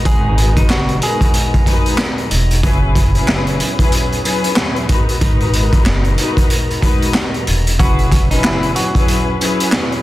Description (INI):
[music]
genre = hip hop, boom-bap hip-hop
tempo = 93 BPM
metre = 4/4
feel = swing 60% on 16ths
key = G# minor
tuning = A4 = 443 Hz
[part]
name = muted studio string section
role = accompaniment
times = 0.0-10.0 s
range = F#3 to B4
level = -20 LUFS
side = left 2 dB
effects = cassette tape, high-pass filter, low-pass filter
[part]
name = percussive tonewheel organ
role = sustained chords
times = 0.0-10.0 s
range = F#3 to A#5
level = -28 LUFS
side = equal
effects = slow rotary speaker, high-pass filter, low-pass filter
[part]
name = semi-hollow electric guitar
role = melody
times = 0.1-2.0, 7.8-9.2 s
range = D#4 to G#4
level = -23 LUFS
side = equal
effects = warbly pitch drift, high-pass filter, low-pass filter, ping-pong delay
[part]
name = upright bass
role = bass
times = 0.1-8.7 s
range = E1 to G#1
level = -17 LUFS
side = equal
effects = none
[part]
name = raw garage drum kit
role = drums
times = 0.1-10.0 s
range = handclaps, hi-hat, kick drum, snare drum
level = -15 LUFS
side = equal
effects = none
[part]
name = sleigh bells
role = percussion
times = 0.1-9.9 s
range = none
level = -36 LUFS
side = right 6 dB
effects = none
[sound]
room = small room reverb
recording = dense, heavily limited modern master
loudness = -12 LUFS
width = side -16 dB against mid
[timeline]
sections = 0.0-10.0 A section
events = none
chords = 0.0 G#m9; 2.6 F#7sus4; 4.9 G#m9; 7.8 F#7sus4